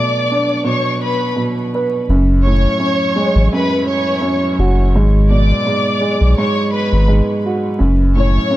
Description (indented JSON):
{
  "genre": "hip hop, boom-bap hip-hop",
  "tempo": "84 BPM",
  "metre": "4/4",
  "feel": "swing 54% on 16ths",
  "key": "F# minor",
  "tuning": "A4 = 436 Hz",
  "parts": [
    { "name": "clear studio violin section", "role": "melody", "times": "0.0-8.6 s", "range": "B4 to D6", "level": "-19 LUFS", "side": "left 1 dB", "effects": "high-pass filter, low-pass filter, tape echo" },
    { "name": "dark upright piano", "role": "accompaniment", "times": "0.0-8.6 s", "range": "F#2 to B4", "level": "-17 LUFS", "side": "right 2 dB", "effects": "cassette tape, high-pass filter, low-pass filter" },
    { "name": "round analog bass", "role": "bass", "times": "2.1-8.4 s", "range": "F#1 to B1", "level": "-12 LUFS", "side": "equal", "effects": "none" }
  ],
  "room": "small room ambience",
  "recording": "echo-heavy mix, vinyl crackle",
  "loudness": "-13 LUFS",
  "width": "side -15 dB against mid",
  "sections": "0.0-2.1 A section; 2.1-8.6 A section",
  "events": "break 0.0-2.1",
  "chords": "0.0 Bm7; 2.1 F#madd9; 4.9 G#dim; 7.8 F#m"
}